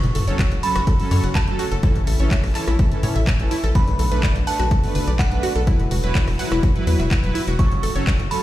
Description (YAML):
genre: progressive house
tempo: 125 BPM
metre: 4/4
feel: straight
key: F# minor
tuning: A4 = 440 Hz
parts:
  - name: glassy synth bell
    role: melody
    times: 0.0-8.4 s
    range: F#5 to C#6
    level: -28 LUFS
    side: right 2 dB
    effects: chorus, sidechain pumping, ping-pong delay
  - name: lush unison pad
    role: sustained chords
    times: 0.0-8.4 s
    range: C#3 to F#4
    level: -31 LUFS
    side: left 1 dB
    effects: chorus, sidechain pumping
  - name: tight sequencer bass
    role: bass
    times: 0.0-8.3 s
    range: E1 to A2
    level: -21 LUFS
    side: equal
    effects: sidechain pumping
  - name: house drum kit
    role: drums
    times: 0.0-8.4 s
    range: handclaps, hi-hat, rim click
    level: -30 LUFS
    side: left 1 dB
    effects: studio reverb
  - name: sub drop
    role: sound effects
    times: 0.0-1.8 s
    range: none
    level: -28 LUFS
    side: left 1 dB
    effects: none
  - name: wide unison pluck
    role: arpeggios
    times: 0.2-8.4 s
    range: E4 to A5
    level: -29 LUFS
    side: equal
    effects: sidechain pumping, ping-pong delay
  - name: soft supersaw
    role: stabs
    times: 0.3-8.4 s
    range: E3 to B4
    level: -27 LUFS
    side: right 2 dB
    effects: phaser, sidechain pumping, ping-pong delay
  - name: electronic kick drum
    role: drums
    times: 0.4-8.2 s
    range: none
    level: -19 LUFS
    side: equal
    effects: studio reverb
room: digital ambience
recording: played on a big sound system in a bare room, large studio reverb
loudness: -17 LUFS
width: side -14 dB against mid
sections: 0.0-8.4 A section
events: impact 0.0-1.8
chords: 0.0 F#m; 1.8 A; 3.8 Bm7; 5.7 Esus2; 7.6 F#m